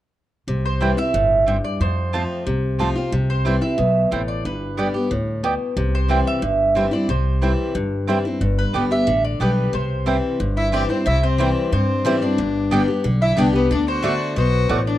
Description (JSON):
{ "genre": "bluegrass", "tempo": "181 BPM", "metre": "4/4", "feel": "straight", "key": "C major", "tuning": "A4 = 442 Hz", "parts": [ { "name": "picked steel-string acoustic guitar", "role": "accompaniment", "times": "0.5-15.0 s", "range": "F2 to G4", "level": "-22 LUFS", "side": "left 2 dB", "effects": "none" }, { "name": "upright bass", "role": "bass", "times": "0.5-15.0 s", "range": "G1 to G2", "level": "-22 LUFS", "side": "equal", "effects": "none" }, { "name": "mandolin", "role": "melody", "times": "0.7-15.0 s", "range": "B4 to E5", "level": "-23 LUFS", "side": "right 3 dB", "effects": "none" }, { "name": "mandolin", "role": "stabs", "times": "0.8-14.8 s", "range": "A3 to A5", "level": "-25 LUFS", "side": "right 5 dB", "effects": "none" }, { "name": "clear fiddle", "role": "second line", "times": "10.6-15.0 s", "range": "B3 to G4", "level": "-24 LUFS", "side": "left 5 dB", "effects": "none" } ], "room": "small room ambience", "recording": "dry, close 1970s-style studio recording", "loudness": "-17 LUFS", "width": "side -13 dB against mid", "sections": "0.5-11.1 A section; 11.1-15.0 B section", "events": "none", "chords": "0.5 C; 1.8 F; 3.1 C; 4.4 G; 5.8 C; 8.4 G; 9.7 C; 12.4 G; 13.7 D", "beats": "| 0.48 0.81 1.14 1.47 | 1.80 2.13 2.46 2.79 | 3.12 3.46 3.79 4.12 | 4.45 4.78 5.11 5.44 | 5.77 6.10 6.43 6.76 | 7.09 7.42 7.75 8.08 | 8.41 8.75 9.08 9.41 | 9.74 10.07 10.40 10.73 | 11.06 11.40 11.73 12.06 | 12.39 12.72 13.05 13.38 | 13.71 14.04 14.37 14.70" }